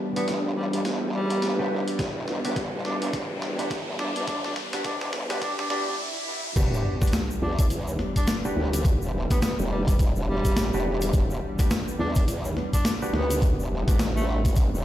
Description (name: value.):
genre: glitch hop.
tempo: 105 BPM.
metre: 4/4.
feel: swing 59% on 16ths.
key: E minor.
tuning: A4 = 438 Hz.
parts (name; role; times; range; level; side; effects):
warm analog pad; sustained chords; 0.0-14.8 s; E3 to D4; -32 LUFS; equal; chorus, sidechain pumping.
mellow clav; stabs; 0.0-14.0 s; D4 to B4; -33 LUFS; right 1 dB; sidechain pumping, low-pass filter, ping-pong delay.
riser, swell and sub drop; sound effects; 0.0-8.8 s; none; -34 LUFS; equal; none.
clear tenor saxophone; melody; 0.2-14.4 s; G3 to D4; -32 LUFS; equal; ping-pong delay.
boom bap sampler-style drum kit; drums; 0.2-14.7 s; crash cymbal, hi-hat, snare drum; -31 LUFS; equal; high-pass filter on hats, high-pass filter on snare, high-pass filter on cymbals, high-pass filter on room.
growl bass; bass; 0.3-14.8 s; E1 to E2; -28 LUFS; equal; chorus, high-pass filter.
electronic kick drum; drums; 2.0-14.7 s; none; -24 LUFS; equal; none.
egg shaker; percussion; 6.6-14.8 s; none; -40 LUFS; left 2 dB; none.
room: moderate studio reverb, RT60 0.5 s.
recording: played on a big sound system in a bare room, large studio reverb, high-pass filter.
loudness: -23 LUFS.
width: side -13 dB against mid.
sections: 0.0-6.6 A section; 6.6-14.8 B section.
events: build-up 0.0-6.6; drum fill 0.0-6.0; riser 0.0-6.6; filter sweep 0.0-6.6; swell 5.4-6.6; stop 6.0-6.6; drop 6.6-14.8; impact 6.6-8.9.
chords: 0.0 Em7.